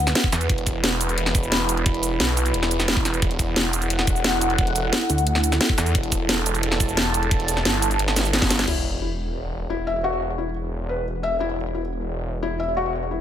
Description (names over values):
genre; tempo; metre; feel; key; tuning
dark technical drum and bass; 176 BPM; 4/4; straight; unclear; A4 = 440 Hz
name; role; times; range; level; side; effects
dark analog pad; sustained chords; 0.0-13.2 s; E4 to B5; -28 LUFS; right 2 dB; chorus, phaser, sidechain pumping
pulsing pluck wobble bass; bass; 0.0-0.1, 5.1-5.6 s; D2; -21 LUFS; equal; chorus
drum and bass drum kit; drums; 0.1-8.7 s; crash cymbal, hi-hat, shaker, snare drum; -23 LUFS; equal; small room ambience
electronic kick drum; drums; 0.2-8.5 s; none; -23 LUFS; equal; small room ambience
snarling distorted saw bass; bass; 0.3-13.2 s; E1 to E2; -25 LUFS; equal; distortion, tube saturation, sidechain pumping
felt-muted upright piano; arpeggios; 8.7-13.2 s; E4 to E5; -26 LUFS; left 4 dB; sidechain pumping, ping-pong delay
sub drop; sound effects; 8.7-10.0 s; none; -31 LUFS; equal; none
room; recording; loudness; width
light reverb, digital ambience; none; -20 LUFS; side -10 dB against mid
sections
0.0-8.7 A section; 8.7-13.2 B section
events
drop 0.0-8.7; drum fill 8.2-8.7; impact 8.7-10.0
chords
0.0 Emadd9; 8.7 Esus2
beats
0.15 | 0.49 0.84 1.18 1.52 | 1.86 2.20 2.54 2.88 | 3.22 3.56 3.90 4.25 | 4.59 4.93 5.27 5.61 | 5.95 6.29 6.63 6.97 | 7.31 7.65 8.00 8.34 | 8.68 9.02 9.36 9.70 | 10.04 10.38 10.72 11.06 | 11.40 11.74 12.09 12.43 | 12.77 13.11